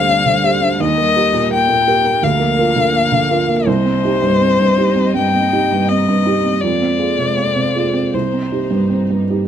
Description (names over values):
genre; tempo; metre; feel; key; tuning
neoclassical piano and strings; 76-84 BPM; 4/4; rubato; C minor; A4 = 439 Hz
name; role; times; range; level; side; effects
warm violin; melody; 0.0-8.9 s; C5 to G5; -16 LUFS; left 5 dB; none
felt-muted upright piano; accompaniment; 0.0-9.5 s; C2 to C5; -16 LUFS; right 3 dB; none
rich studio string section; sustained chords; 0.0-9.5 s; F3 to Eb5; -26 LUFS; left 1 dB; none
room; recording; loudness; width
light reverb; close, detailed microphones; -13 LUFS; side -9 dB against mid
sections
0.0-9.5 A section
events
none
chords
0.0 Gsus4/D; 0.8 Eb; 2.2 Bb/D; 3.7 Cm; 6.6 Fm; 8.1 Cm